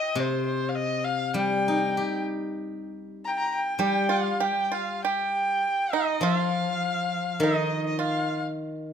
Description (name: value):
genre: chinese traditional, Chinese chamber ensemble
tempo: 100 BPM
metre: 4/4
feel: rubato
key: unclear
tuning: A4 = 443 Hz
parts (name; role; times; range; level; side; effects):
- rich erhu; melody; 0.0-8.4 s; C5 to Bb5; -27 LUFS; left 2 dB; none
- steel-string zither; accompaniment; 0.2-8.9 s; C3 to G4; -28 LUFS; left 2 dB; none
- pipa; second line; 3.8-8.4 s; Eb4 to G4; -28 LUFS; right 9 dB; none
room: light reverb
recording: close, detailed microphones, faint mains hum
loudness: -24 LUFS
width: side -8 dB against mid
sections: 0.0-8.9 A section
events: none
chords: none